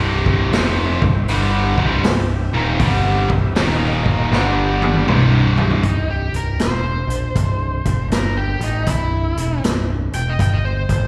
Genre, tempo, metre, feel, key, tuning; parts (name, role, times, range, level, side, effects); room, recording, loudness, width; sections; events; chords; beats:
blues rock power trio and southern rock; 79 BPM; 4/4; swing 66% on 8ths; C mixolydian; A4 = 439 Hz
overdriven tonewheel organ; sustained chords; 0.0-5.8 s; C4 to E5; -31 LUFS; equal; slow rotary speaker, chorus vibrato
distorted electric guitar; riff; 0.0-5.8 s; C2 to G3; -21 LUFS; equal; overdrive, slapback echo
growling picked electric bass; bass; 0.0-11.1 s; C1 to Bb1; -22 LUFS; equal; overdrive
raw garage drum kit; drums; 0.3-11.0 s; hi-hat, kick drum, snare drum, toms; -22 LUFS; equal
overdriven slide guitar; melody; 5.8-11.1 s; Eb4 to G5; -27 LUFS; equal; slapback echo
light reverb; live gig heard through the venue's PA, recital hall reverb; -18 LUFS; mono
0.0-5.8 A section; 5.8-11.1 B section
drum fill 4.3-5.8
0.0 C; 3.6 Eb5; 4.3 G5; 5.1 C
0.52 1.28 2.04 | 2.80 3.55 4.31 5.07 | 5.83 6.59 7.35 8.11 | 8.87 9.63 10.39